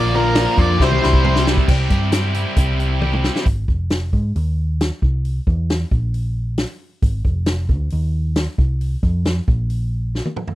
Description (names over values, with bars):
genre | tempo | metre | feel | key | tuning
classic rock | 135 BPM | 4/4 | straight | C major | A4 = 439 Hz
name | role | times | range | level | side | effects
octave-fuzz lead guitar | melody | 0.0-1.4 s | Bb4 to D5 | -21 LUFS | equal | distortion, slapback echo
tack piano | accompaniment | 0.0-1.6 s | E4 to B5 | -24 LUFS | left 6 dB | none
distorted electric guitar | riff | 0.0-3.5 s | Bb2 to G4 | -23 LUFS | right 1 dB | distortion
tight distorted guitar | riff | 0.0-1.7 s | Bb2 to C4 | -22 LUFS | equal | distortion
hollow-body short-scale picked electric bass | bass | 0.0-10.2 s | F1 to Ab2 | -19 LUFS | equal | none
vintage drum kit | drums | 0.4-10.6 s | crash cymbal, hi-hat, kick drum, snare drum, toms | -19 LUFS | equal | none
room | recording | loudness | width
little or no reverb | dry, close 1970s-style studio recording | -16 LUFS | side -15 dB against mid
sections
0.0-1.7 A section; 1.7-3.5 B section; 3.5-10.6 C section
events
drum fill 0.8-1.7, 3.0-3.5, 10.2-10.6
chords
0.0 Bb; 0.8 C; 3.5 Fm; 4.4 N.C.; 5.0 C; 5.9 N.C.; 7.0 Fm6; 7.9 N.C.; 8.6 Csus4; 9.5 N.C.